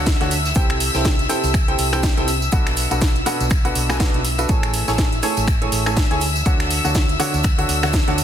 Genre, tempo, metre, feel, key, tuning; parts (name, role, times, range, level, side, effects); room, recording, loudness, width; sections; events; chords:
piano house; 122 BPM; 4/4; swing 58% on 16ths; A4 = 441 Hz
warm chamber violin section; sustained chords; 0.0-8.2 s; E5 to E6; -26 LUFS; left 4 dB; sidechain pumping
clear baby grand piano; riff; 0.0-8.2 s; B2 to G#5; -23 LUFS; right 1 dB; sidechain pumping, dub echo
hollow-body short-scale fingered electric bass; bass; 0.0-8.2 s; A1 to D2; -24 LUFS; equal; sidechain pumping
electronic kick drum; drums; 0.1-8.0 s; -19 LUFS; equal; overdrive
house drum kit; drums; 0.1-8.2 s; finger snaps, hi-hat, snare drum, tambourine; -24 LUFS; equal; overdrive
huge arena drum kit; drums; 0.1-8.2 s; hi-hat, shaker, snare drum; -32 LUFS; right 2 dB
tambourine; percussion; 0.1-8.2 s; -37 LUFS; left 6 dB
light reverb; dense, heavily limited modern master; -16 LUFS; side -10 dB against mid
0.0-8.2 A section
0.0 Dmaj7; 0.6 C6; 2.5 Bm7; 4.5 Amaj7; 6.2 Dmaj7